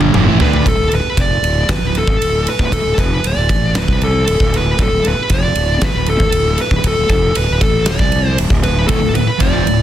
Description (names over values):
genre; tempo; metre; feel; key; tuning
hard rock; 117 BPM; 4/4; straight; unclear; A4 = 440 Hz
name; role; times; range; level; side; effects
biting overdriven guitar; riff; 0.0-0.7, 8.9-9.8 s; D2 to D4; -19 LUFS; left 8 dB; none
sludgy distorted guitar; riff; 0.0-0.7, 8.9-9.8 s; D2 to D4; -18 LUFS; right 11 dB; overdrive
fuzz fingered electric bass; bass; 0.0-9.8 s; D1 to D2; -17 LUFS; equal; overdrive
huge arena drum kit; drums; 0.0-9.8 s; kick drum, ride cymbal, snare drum, toms; -17 LUFS; equal; none
smooth overdriven lead guitar; melody; 0.4-9.8 s; A4 to D5; -17 LUFS; equal; slapback echo
room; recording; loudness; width
small room ambience; dense, heavily limited modern master; -12 LUFS; side -11 dB against mid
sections
0.7-9.8 A section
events
drum fill 0.0-0.7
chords
0.2 D5